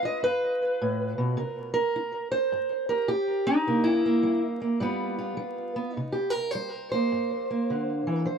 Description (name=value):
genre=acoustic country blues, solo or duo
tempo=105 BPM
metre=4/4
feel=swing 65% on 8ths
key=unclear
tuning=A4 = 442 Hz
part: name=fingerpicked steel-string acoustic guitar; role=solo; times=0.0-8.4 s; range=G2 to Eb5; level=-25 LUFS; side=right 1 dB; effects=tape echo
room=light reverb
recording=close, detailed microphones, vinyl crackle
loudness=-25 LUFS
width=side -7 dB against mid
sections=0.0-6.0 A section; 6.0-8.4 B section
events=steel-string acoustic guitar solo 0.0-6.0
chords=0.0 G7; 1.4 C7; 4.8 G7; 6.0 C7(no3)